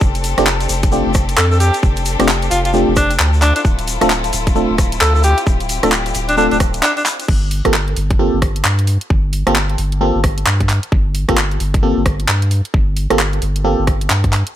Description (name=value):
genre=UK garage, two-step garage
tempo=132 BPM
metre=4/4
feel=swing 61% on 16ths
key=G dorian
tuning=A4 = 443 Hz
part: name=clear chamber violin section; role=sustained chords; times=0.0-7.3 s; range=C4 to A4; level=-24 LUFS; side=left 5 dB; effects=sidechain pumping
part: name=saturated sub bass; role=bass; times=0.0-14.4 s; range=D1 to G2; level=-17 LUFS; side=equal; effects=none
part: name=electronic kick drum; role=drums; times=0.0-14.3 s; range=none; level=-15 LUFS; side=equal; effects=overdrive, studio reverb
part: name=tube shaker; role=percussion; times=0.0-7.3 s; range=none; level=-28 LUFS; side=left 5 dB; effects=none
part: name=garage drum kit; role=drums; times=0.1-14.5 s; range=crash cymbal, handclaps, hi-hat, rim click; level=-19 LUFS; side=equal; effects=overdrive, studio reverb
part: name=FM electric piano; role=stabs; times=0.4-13.8 s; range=A3 to A4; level=-18 LUFS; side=right 1 dB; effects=chorus, phaser, dub echo
part: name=edgy alto saxophone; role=melody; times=1.4-7.0 s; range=D4 to A4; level=-19 LUFS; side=equal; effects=dub echo
room=little or no reverb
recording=none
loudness=-13 LUFS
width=side -12 dB against mid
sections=0.0-7.3 A section; 7.3-14.6 B section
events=drop 0.0-7.3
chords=0.0 F69; 3.4 Dm7; 7.3 Gm11